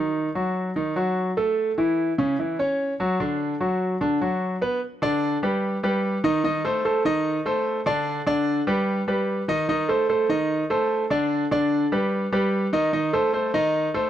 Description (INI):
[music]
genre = latin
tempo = 148 BPM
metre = 4/4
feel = straight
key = unclear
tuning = A4 = 440 Hz
[part]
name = bright concert grand piano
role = solo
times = 0.0-14.1 s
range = C#3 to Eb5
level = -21 LUFS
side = equal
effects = none
[sound]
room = light reverb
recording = close, detailed microphones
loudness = -21 LUFS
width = side -11 dB against mid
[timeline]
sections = 0.0-4.8 A section; 4.8-14.1 B section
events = none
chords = 0.0 D#dim; 1.6 A; 3.2 D; 4.8 G; 6.4 Cm69; 8.1 G; 9.7 Cm69; 11.3 G; 12.9 Cm6